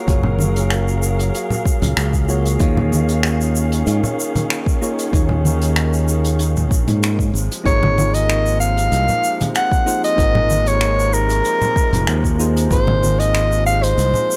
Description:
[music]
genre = sunset chillout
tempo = 95 BPM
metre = 4/4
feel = straight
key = Ab mixolydian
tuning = A4 = 440 Hz
[part]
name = soft electric-piano-like synth keys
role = accompaniment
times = 0.0-14.4 s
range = Bb3 to Db5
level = -28 LUFS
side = equal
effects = chorus, analog delay
[part]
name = muted chamber string section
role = sustained chords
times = 0.0-14.4 s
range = C3 to F5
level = -29 LUFS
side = equal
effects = none
[part]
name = modern bright fingered electric bass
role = bass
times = 0.1-14.1 s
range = F1 to Ab2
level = -20 LUFS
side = equal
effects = none
[part]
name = electronic kick drum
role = drums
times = 0.1-12.8 s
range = none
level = -20 LUFS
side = equal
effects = none
[part]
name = jazz brush drum kit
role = drums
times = 0.1-14.4 s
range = finger snaps, hi-hat, shaker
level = -28 LUFS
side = equal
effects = none
[part]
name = congas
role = percussion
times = 0.2-14.3 s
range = none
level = -24 LUFS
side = equal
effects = none
[part]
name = mellow soprano saxophone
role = melody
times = 7.7-14.4 s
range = Bb4 to Gb5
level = -20 LUFS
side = equal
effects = tape echo
[sound]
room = studio reverb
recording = dry, gritty hardware recording, transformer saturation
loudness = -17 LUFS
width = mono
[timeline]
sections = 0.0-14.4 A section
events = none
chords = 0.0 Gbmaj9; 2.6 Eb9sus4; 7.3 Ab69

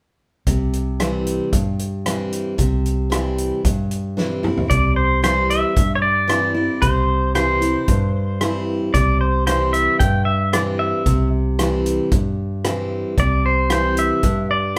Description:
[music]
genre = honky-tonk and classic country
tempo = 113 BPM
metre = 4/4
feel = straight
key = C major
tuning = A4 = 438 Hz
[part]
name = picked steel-string acoustic guitar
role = accompaniment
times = 0.5-14.8 s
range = G2 to E4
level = -25 LUFS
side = equal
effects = none
[part]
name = vintage muted fingered electric bass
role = bass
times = 0.5-14.8 s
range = C2 to G2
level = -24 LUFS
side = equal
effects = none
[part]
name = natural country drum kit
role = drums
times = 0.5-14.8 s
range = hi-hat, kick drum, rim click, snare drum, toms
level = -24 LUFS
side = equal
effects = none
[part]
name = pedal steel guitar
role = melody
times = 4.7-14.8 s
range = C5 to G5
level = -22 LUFS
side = equal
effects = none
[sound]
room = moderate studio reverb, RT60 0.7 s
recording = band playing live in one room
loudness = -19 LUFS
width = mono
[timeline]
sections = 0.5-4.7 A section; 4.7-14.8 B section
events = drum fill 4.2-4.7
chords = 0.5 C

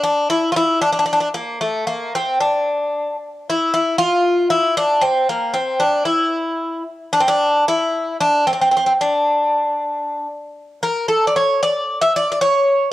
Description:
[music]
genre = greek folk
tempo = 228 BPM (eighths)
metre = 7/8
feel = straight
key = D minor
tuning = A4 = 440 Hz
[part]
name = Greek bouzouki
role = solo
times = 0.0-12.9 s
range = A3 to E5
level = -16 LUFS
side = equal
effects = cassette tape
[sound]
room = moderate spring reverb, RT60 1.9 s, small room ambience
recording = home recording on cassette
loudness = -16 LUFS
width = side -15 dB against mid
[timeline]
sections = 0.0-10.8 A section; 10.8-12.9 B section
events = none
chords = none

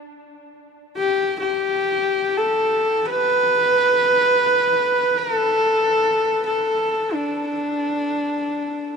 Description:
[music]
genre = mongolian traditional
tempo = free time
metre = none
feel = none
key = unclear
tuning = A4 = 438 Hz
[part]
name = bright horsehead fiddle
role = solo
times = 1.0-9.0 s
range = D4 to B4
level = -18 LUFS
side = equal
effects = none
[sound]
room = moderate huge ambient reverb, RT60 8.0 s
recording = dark, warm production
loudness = -17 LUFS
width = side -5 dB against mid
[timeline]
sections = 0.0-9.0 A section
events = none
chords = none

